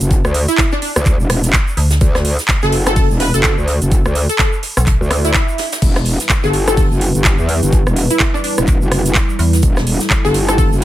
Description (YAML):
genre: bass house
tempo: 126 BPM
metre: 4/4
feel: swing 59% on 16ths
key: E minor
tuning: A4 = 438 Hz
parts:
  - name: metallic wobble bass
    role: bass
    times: 0.0-10.8 s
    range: E1 to E2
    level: -16 LUFS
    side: equal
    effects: chorus, overdrive, sidechain pumping
  - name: house drum kit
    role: drums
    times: 0.0-10.8 s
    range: crash cymbal, handclaps, hi-hat, rim click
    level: -19 LUFS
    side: right 1 dB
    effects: none
  - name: egg shaker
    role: percussion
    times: 0.0-10.8 s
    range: none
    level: -28 LUFS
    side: right 2 dB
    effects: none
  - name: electronic kick drum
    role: drums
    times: 0.1-10.7 s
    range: none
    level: -15 LUFS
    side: equal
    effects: none
  - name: soft brush drum kit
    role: drums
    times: 0.1-10.8 s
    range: hi-hat, snare drum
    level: -29 LUFS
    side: right 2 dB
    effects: sidechain pumping on hats, high-pass filter on hats, high-pass filter on snare, high-pass filter on room
  - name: plucky unison lead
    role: melody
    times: 0.5-10.7 s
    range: D4 to B4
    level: -21 LUFS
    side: equal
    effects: wide subtle chorus, dub echo
  - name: metallic FM bass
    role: bass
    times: 1.8-5.0, 9.4-9.6 s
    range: B1 to E2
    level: -13 LUFS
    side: equal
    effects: overdrive, sidechain pumping
  - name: swell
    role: sound effects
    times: 5.0-5.8 s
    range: none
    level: -26 LUFS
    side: right 6 dB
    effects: none
  - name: dark analog pad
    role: sustained chords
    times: 5.8-10.8 s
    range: G3 to B4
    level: -23 LUFS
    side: right 1 dB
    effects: chorus, sidechain pumping
room: little or no reverb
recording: none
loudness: -12 LUFS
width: side -14 dB against mid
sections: 0.0-10.8 A section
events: swell 5.0-5.8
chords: 0.0 D; 5.8 Em